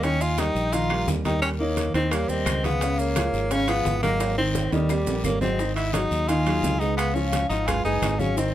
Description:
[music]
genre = Afro-Cuban jazz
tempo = 173 BPM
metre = 4/4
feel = straight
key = unclear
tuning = A4 = 440 Hz
[part]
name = breathy tenor saxophone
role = melody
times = 0.0-8.5 s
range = G3 to F4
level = -26 LUFS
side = equal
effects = none
[part]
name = breathy mellow jazz flute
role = second line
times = 0.0-8.5 s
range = Bb4 to Bb5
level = -33 LUFS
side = left 4 dB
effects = none
[part]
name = dark upright piano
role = accompaniment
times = 0.0-8.5 s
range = Db3 to F5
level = -27 LUFS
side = equal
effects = none
[part]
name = fingered electric bass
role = bass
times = 0.0-8.5 s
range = Gb1 to Eb2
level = -27 LUFS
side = equal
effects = none
[part]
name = bongos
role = percussion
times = 0.0-8.5 s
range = none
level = -38 LUFS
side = left 6 dB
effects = none
[part]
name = congas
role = percussion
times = 0.0-8.5 s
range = none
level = -33 LUFS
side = equal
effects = none
[part]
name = guiro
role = percussion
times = 0.0-8.5 s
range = none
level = -40 LUFS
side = left 4 dB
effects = none
[part]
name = maracas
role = percussion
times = 0.0-8.5 s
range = none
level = -40 LUFS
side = right 6 dB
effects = none
[part]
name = timbales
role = percussion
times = 0.0-8.2 s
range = none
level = -34 LUFS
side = right 6 dB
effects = none
[part]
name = claves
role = percussion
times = 0.4-8.2 s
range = none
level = -37 LUFS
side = left 6 dB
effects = none
[sound]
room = light reverb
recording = none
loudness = -21 LUFS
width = side -12 dB against mid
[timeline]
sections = 0.0-5.6 A section; 5.6-8.5 A section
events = drum fill 4.2-5.6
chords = 0.0 Eb7; 2.8 Db7; 4.2 Ab7; 4.9 Eb; 5.6 Ab5; 7.0 Db7

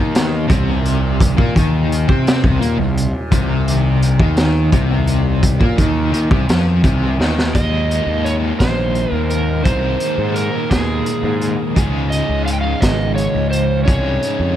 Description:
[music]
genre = psychedelic rock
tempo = 57 BPM (dotted quarters)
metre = 6/8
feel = straight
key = unclear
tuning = A4 = 442 Hz
[part]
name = overdriven electric guitar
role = riff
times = 0.0-14.6 s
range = Eb2 to Ab4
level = -20 LUFS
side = left 1 dB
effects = tremolo
[part]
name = fuzz picked electric bass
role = bass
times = 0.0-14.6 s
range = Ab1 to C3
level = -18 LUFS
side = equal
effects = overdrive
[part]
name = tanpura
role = drone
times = 0.0-14.0 s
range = Eb2 to Eb3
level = -28 LUFS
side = equal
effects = none
[part]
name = raw garage drum kit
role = drums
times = 0.1-14.4 s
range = hi-hat, kick drum, snare drum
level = -18 LUFS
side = equal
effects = none
[part]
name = overdriven slide guitar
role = melody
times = 7.6-14.6 s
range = Ab4 to G5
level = -21 LUFS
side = right 2 dB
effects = dub echo
[sound]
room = small room ambience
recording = echo-heavy mix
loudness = -14 LUFS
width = side -11 dB against mid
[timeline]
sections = 0.0-7.5 A section; 7.5-14.6 B section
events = drum fill 7.2-7.5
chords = 0.0 Cm7; 7.5 Ebsus4; 11.8 Dbsus2

